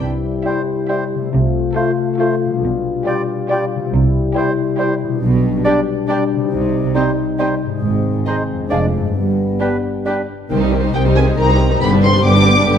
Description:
cinematic, playful, whimsical film cue; 138 BPM; 3/4; straight; C major, C minor from 5.2 s; A4 = 440 Hz
mellow French horn section; sustained chords; 0.0-10.3 s; G3 to F4; -20 LUFS; left 4 dB
concert harp; arpeggios; 0.0-12.8 s; F2 to C6; -22 LUFS; left 9 dB
warm chamber cello section; bass; 0.0-12.8 s; C2 to C3; -19 LUFS; right 3 dB
warm studio double bass section; bass; 0.0-12.8 s; F1 to C2; -21 LUFS; right 3 dB
mellow clarinet; second line; 0.4-10.2 s; D4 to F4; -28 LUFS; equal
dark studio violin section; melody; 0.5-12.8 s; B4 to D6; -21 LUFS; left 2 dB
mellow concert flute; second line; 0.5-10.1 s; Eb5 to G5; -30 LUFS; right 1 dB
warm oboe; second line; 0.5-10.2 s; B4 to D5; -27 LUFS; right 2 dB
warm studio violin section; second line; 0.5-12.8 s; B3 to E5; -26 LUFS; left 2 dB
dark bassoon; accompaniment; 0.5-10.2 s; G3 to A3; -24 LUFS; right 2 dB
warm studio viola section; accompaniment; 0.5-12.8 s; D3 to F4; -23 LUFS; equal
vibraphone with hard mallets; melody; 10.9-12.8 s; G4 to D5; -23 LUFS; right 3 dB
moderate scoring stage reverb, RT60 1.6 s; -14 LUFS; side -8 dB against mid
0.0-10.5 A section; 10.5-12.8 B section
0.0 C; 1.3 F/C; 2.6 G7/B; 3.9 C; 5.2 G/B; 6.5 Cm; 7.8 Ab; 8.7 Ddim/F; 9.2 G; 10.5 Cm; 11.8 G
| 0.01 0.45 0.89 | 1.32 1.76 2.19 | 2.63 3.06 3.50 | 3.93 4.36 4.79 | 5.22 5.66 6.09 | 6.52 6.96 7.39 | 7.83 8.27 8.71 | 9.15 9.60 10.05 | 10.50 10.94 11.38 | 11.81 12.24 12.68

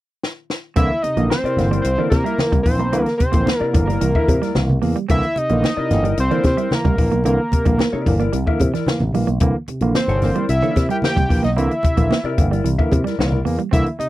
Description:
funk; 111 BPM; 4/4; straight; C mixolydian; A4 = 440 Hz
compact cocktail drum kit; drums; 0.2-14.1 s; hi-hat, kick drum, snare drum; -20 LUFS; left 1 dB
fat analog lead; melody; 0.8-14.1 s; Bb4 to G5; -22 LUFS; equal
semi-hollow electric guitar; riff; 0.8-14.0 s; E3 to C4; -25 LUFS; right 9 dB
barky tine electric piano; stabs; 0.8-14.1 s; C3 to Bb3; -24 LUFS; right 1 dB; overdrive
picked electric bass with an envelope filter; bass; 0.8-13.8 s; G1 to C3; -20 LUFS; equal
congas; percussion; 0.8-14.1 s; -26 LUFS; right 2 dB
mellow electric guitar; accompaniment; 1.5-13.4 s; E4 to E5; -25 LUFS; left 5 dB
little or no reverb; dry, close 1970s-style studio recording; -16 LUFS; side -16 dB against mid
0.8-14.1 A section
drum fill 0.2-0.8
0.0 N.C.; 0.8 C9
0.23 | 0.77 1.31 1.85 2.39 | 2.93 3.47 4.01 4.55 | 5.09 5.63 6.17 6.71 | 7.25 7.79 8.34 8.88 | 9.41 9.96 10.49 11.03 | 11.57 12.11 12.65 13.19 | 13.73

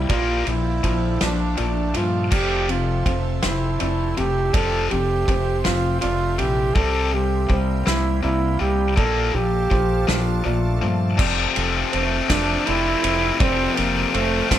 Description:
post-rock; 54 BPM (dotted quarters); 6/8; straight; F major; A4 = 441 Hz
clear trombone; melody; 0.0-14.6 s; A3 to A4; -24 LUFS; right 3 dB; analog delay
soft additive organ-like pad; sustained chords; 0.0-14.6 s; Bb3 to D6; -36 LUFS; right 3 dB; ensemble chorus, built-in reverb
felt-muted upright piano; arpeggios; 0.0-14.6 s; C5 to D5; -35 LUFS; right 10 dB; analog delay
twangy electric guitar; arpeggios; 0.0-14.6 s; F2 to E4; -31 LUFS; equal; spring reverb, analog delay
tight distorted guitar; riff; 0.0-14.6 s; F2 to C4; -24 LUFS; left 6 dB; distortion
fingered electric bass; bass; 0.0-14.6 s; F1 to G2; -25 LUFS; equal
loose indie drum kit; drums; 0.1-14.6 s; crash cymbal, kick drum, ride cymbal, snare drum; -25 LUFS; equal
light reverb, small room reverb; -18 LUFS; side -11 dB against mid
0.0-11.2 A section; 11.2-14.6 B section
build-up 0.0-11.2
0.1 Bbmaj7; 2.3 Fmaj7; 6.8 C7; 9.0 Bbmaj7; 11.2 Fmaj7
| 0.10 1.21 | 2.32 3.43 | 4.54 5.65 | 6.76 7.87 | 8.98 10.08 | 11.19 12.30 | 13.40 14.51

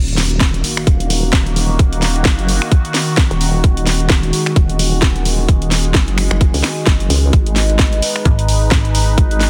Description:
bass house; 130 BPM; 4/4; swing 58% on 16ths; Eb minor; A4 = 440 Hz
sweeping resonant pad; sustained chords; 0.0-9.5 s; Eb3 to Cb5; -24 LUFS; equal; chorus, phaser, sidechain pumping
vowel-sweep wobble bass; bass; 0.0-9.5 s; Eb1 to Db2; -19 LUFS; equal; chorus, sidechain pumping
sub drop; sound effects; 0.0-1.8 s; -34 LUFS; equal
house drum kit; drums; 0.1-9.5 s; finger snaps, hi-hat, snare drum; -21 LUFS; equal; overdrive
electronic kick drum; drums; 0.4-9.3 s; -15 LUFS; equal; overdrive
metallic FM bass; bass; 8.3-9.2 s; Ab1; -17 LUFS; equal; tube saturation, sidechain pumping
digital ambience; dense, heavily limited modern master; -14 LUFS; mono
0.0-9.5 A section
impact 0.0-1.8
0.0 Ebm; 7.3 Abm
0.41 0.87 1.33 | 1.79 2.25 2.72 3.18 | 3.64 4.10 4.56 5.02 | 5.49 5.95 6.41 6.87 | 7.33 7.79 8.25 8.72 | 9.18

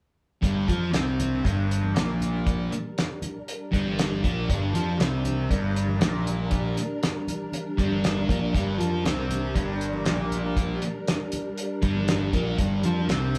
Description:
psychedelic rock; 118 BPM; 4/4; straight; G minor; A4 = 439 Hz
soft string machine; sustained chords; 0.8-13.4 s; G3 to Bb4; -36 LUFS; equal; ensemble chorus
thick fuzz guitar; riff; 0.4-13.4 s; G2 to F4; -30 LUFS; equal; distortion, phaser
fuzz fingered electric bass; bass; 0.4-13.4 s; G1 to F2; -32 LUFS; equal; overdrive
cloth-damped thuddy drum kit; drums; 0.4-13.4 s; hi-hat, kick drum, snare drum; -29 LUFS; equal
congas; percussion; 0.7-13.0 s; -39 LUFS; equal
moderate studio reverb, RT60 0.8 s; band playing live in one room; -26 LUFS; mono
0.4-13.4 A section
0.4 Gm
| 0.42 0.93 1.44 1.95 | 2.45 2.96 3.47 3.98 | 4.49 5.00 5.50 6.01 | 6.52 7.03 7.53 8.04 | 8.55 9.05 9.56 10.07 | 10.57 11.08 11.59 12.09 | 12.60 13.10

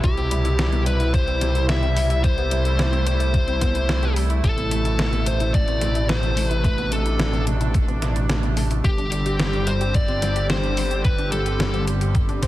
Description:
synthwave; 109 BPM; 4/4; straight; A minor; A4 = 440 Hz
fuzz lead guitar; melody; 0.0-11.8 s; G4 to E5; -26 LUFS; left 2 dB; distortion, digital delay
chorused pulse-width pad; sustained chords; 0.0-12.5 s; B2 to G4; -27 LUFS; right 2 dB; sidechain pumping
wide unison pluck; arpeggios; 0.0-12.5 s; G3 to C5; -32 LUFS; left 2 dB; digital delay
chorused synth bass; bass; 0.0-12.5 s; G1 to C2; -22 LUFS; equal; sidechain pumping
detuned 8-bit digital drum machine; drums; 0.0-12.5 s; hi-hat, snare drum; -28 LUFS; equal
electronic kick drum; drums; 0.0-12.5 s; -21 LUFS; equal
light reverb, digital ambience; dense, heavily limited modern master; -18 LUFS; side -15 dB against mid
0.0-12.5 A section
kick drops out 3.9-4.4
0.0 Cmaj7; 4.4 Amadd9; 8.8 Gsus4
| 0.04 0.59 1.14 1.69 | 2.24 2.79 3.34 3.89 | 4.44 4.99 5.54 6.09 | 6.64 7.19 7.74 8.29 | 8.85 9.39 9.95 10.50 | 11.05 11.60 12.15

